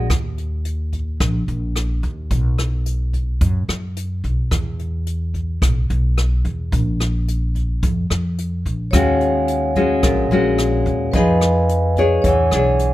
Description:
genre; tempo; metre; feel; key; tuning
bossa nova; 109 BPM; 4/4; straight; Eb minor; A4 = 439 Hz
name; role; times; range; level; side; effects
nylon-string guitar; accompaniment; 0.0-0.1, 8.9-12.9 s; Bb2 to Db5; -19 LUFS; left 3 dB; none
vibraphone with medium mallets; accompaniment; 0.0-0.1, 8.9-12.9 s; Cb5 to Ab5; -19 LUFS; right 2 dB; none
upright bass; bass; 0.0-12.9 s; Bb1 to F#2; -20 LUFS; equal; none
jazz brush drum kit; drums; 0.1-12.9 s; hi-hat, kick drum, rim click; -23 LUFS; equal; none
room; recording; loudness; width
little or no reverb; none; -17 LUFS; side -15 dB against mid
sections
0.1-12.9 A section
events
none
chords
0.1 Eb5; 2.3 B5; 4.5 E5; 6.7 Bb5; 8.9 Ebm11; 11.1 Fm7b5; 12.2 E13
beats
| 0.10 0.65 1.20 1.75 | 2.31 2.86 3.41 3.96 | 4.52 5.07 5.62 6.17 | 6.72 7.28 7.83 8.38 | 8.93 9.48 10.04 10.59 | 11.14 11.69 12.24 12.79

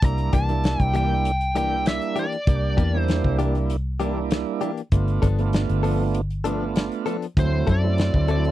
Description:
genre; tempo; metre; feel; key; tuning
straight-eighth soul blues; 98 BPM; 4/4; straight; unclear; A4 = 440 Hz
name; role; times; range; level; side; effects
biting lead guitar; melody; 0.0-3.4, 7.4-8.5 s; C5 to Bb5; -27 LUFS; left 1 dB; overdrive
tonewheel organ; accompaniment; 0.0-8.5 s; F#3 to G4; -27 LUFS; right 8 dB; slow rotary speaker, overdrive
vintage muted fingered electric bass; bass; 0.0-8.5 s; G1 to F#2; -23 LUFS; equal; none
warm soul drum kit; drums; 0.0-8.5 s; hi-hat, kick drum, snare drum; -22 LUFS; equal; none
direct-recorded clean electric guitar; stabs; 0.3-8.5 s; E3 to A4; -27 LUFS; left 7 dB; none
room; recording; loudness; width
little or no reverb; dry, close 1970s-style studio recording; -20 LUFS; side -14 dB against mid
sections
0.0-8.5 A section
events
none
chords
0.0 C9; 4.9 G9; 7.4 D9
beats
| 0.02 0.64 1.25 1.86 | 2.47 3.08 3.70 4.31 | 4.92 5.53 6.14 6.76 | 7.37 7.98

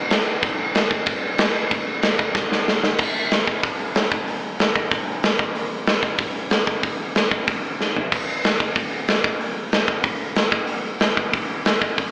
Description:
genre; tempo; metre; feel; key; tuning
punk; 187 BPM; 4/4; straight; none; none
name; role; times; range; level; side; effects
big rock drum kit; drums; 0.1-12.1 s; crash cymbal, hi-hat, kick drum, snare drum, toms; -18 LUFS; equal; none
room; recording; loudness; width
light reverb; live gig heard through the venue's PA, club reverb, AM radio sound; -18 LUFS; side -29 dB against mid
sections
0.0-3.0 A section; 3.0-12.1 B section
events
drum fill 2.3-3.0, 7.8-8.1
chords
none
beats
0.11 | 0.43 0.75 1.07 1.39 | 1.71 2.03 2.35 2.67 | 2.99 3.31 3.63 3.95 | 4.27 4.59 4.91 5.23 | 5.55 5.87 6.19 6.51 | 6.83 7.15 7.47 7.80 | 8.12 8.44 8.76 9.08 | 9.40 9.72 10.04 10.37 | 10.69 11.01 11.33 11.65 | 11.97

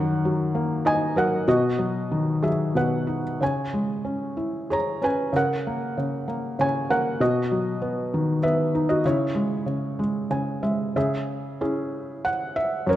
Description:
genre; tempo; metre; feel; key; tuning
classical, lyrical solo piano; 91-99 BPM; 3/4; rubato; C# dorian; A4 = 440 Hz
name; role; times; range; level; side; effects
felt-muted upright piano; solo; 0.0-13.0 s; F#2 to A#5; -22 LUFS; equal; none
room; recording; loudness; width
light reverb; dark, warm production; -22 LUFS; side -13 dB against mid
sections
0.0-11.0 A section; 11.0-13.0 A section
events
felt piano fill 10.0-11.0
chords
0.0 D#m/F#; 1.5 B; 3.4 C#m; 5.3 F#/C#; 7.2 B; 9.0 C#m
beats
0.23 0.84 | 1.47 2.10 2.76 | 3.42 4.07 4.71 | 5.34 5.97 6.59 | 7.21 7.82 8.43 | 9.04 9.66 10.30 | 10.96 11.61 12.25 | 12.88

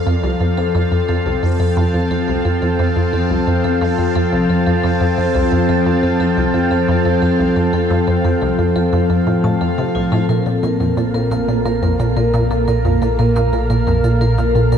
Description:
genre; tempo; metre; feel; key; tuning
ambient, sequencer-driven space music; 88 BPM; 4/4; straight; unclear; A4 = 440 Hz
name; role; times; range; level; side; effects
lush unison pad; sustained chords; 0.0-14.8 s; Bb2 to A5; -18 LUFS; equal; chorus, shimmer reverb
vibraphone with hard mallets; arpeggios; 0.0-14.8 s; F4 to A5; -22 LUFS; moving between left 9 dB and right 3 dB; auto-pan, tape echo, shimmer reverb
bubbling stepped-filter texture; texture; 0.0-14.8 s; F5 to A5; -30 LUFS; right 3 dB; chorus, built-in reverb, shimmer reverb
resonant blip pluck; riff; 0.1-14.8 s; C2 to C3; -18 LUFS; equal; chorus, tape echo
warm sub bass; bass; 10.3-14.8 s; Bb1; -22 LUFS; equal; none
cabasa and percussion blips; percussion; 10.3-14.8 s; none; -49 LUFS; left 1 dB; none
room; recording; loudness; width
wet lush hall reverb, RT60 3.0 s; dark, warm production; -14 LUFS; side -8 dB against mid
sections
0.0-10.3 A section; 10.3-14.8 B section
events
none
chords
0.0 Fadd9; 10.3 Bb5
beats
0.07 0.75 1.43 | 2.11 2.79 3.47 4.16 | 4.84 5.52 6.20 6.88 | 7.57 8.25 8.93 9.61 | 10.29 10.97 11.66 12.34 | 13.02 13.70 14.38

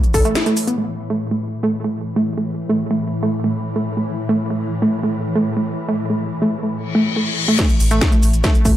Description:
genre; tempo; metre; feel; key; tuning
driving peak-time techno; 141 BPM; 4/4; straight; unclear; A4 = 440 Hz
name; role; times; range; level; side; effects
saturated sub bass; bass; 0.0-0.4, 7.7-8.8 s; A1; -19 LUFS; equal; sidechain pumping, low-pass filter
swarming drone; drone; 0.0-8.8 s; A2 to E3; -24 LUFS; left 1 dB; built-in reverb, sidechain pumping
techno drum kit; drums; 0.0-0.8, 7.6-8.7 s; crash cymbal, hi-hat, shaker, snare drum; -22 LUFS; equal; none
warbly dusty pluck; riff; 0.1-8.7 s; A3 to A4; -19 LUFS; right 1 dB; chorus, overdrive, sidechain pumping, dub echo
electronic kick drum; drums; 0.1-0.2, 7.6-8.7 s; none; -16 LUFS; equal; none
reverse cymbal; sound effects; 6.9-7.6 s; none; -22 LUFS; left 6 dB; none
room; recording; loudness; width
moderate stone room reverb, RT60 0.9 s; none; -16 LUFS; side -12 dB against mid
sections
0.8-7.6 A section; 7.6-8.8 B section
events
break 0.4-0.8; band accent 0.4; reverse cymbal 6.9-7.6; drop 7.6-8.8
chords
0.0 A5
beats
0.35 | 0.78 1.21 1.63 2.06 | 2.48 2.91 3.33 3.76 | 4.18 4.61 5.04 5.46 | 5.89 6.31 6.74 7.16 | 7.59 8.01 8.44

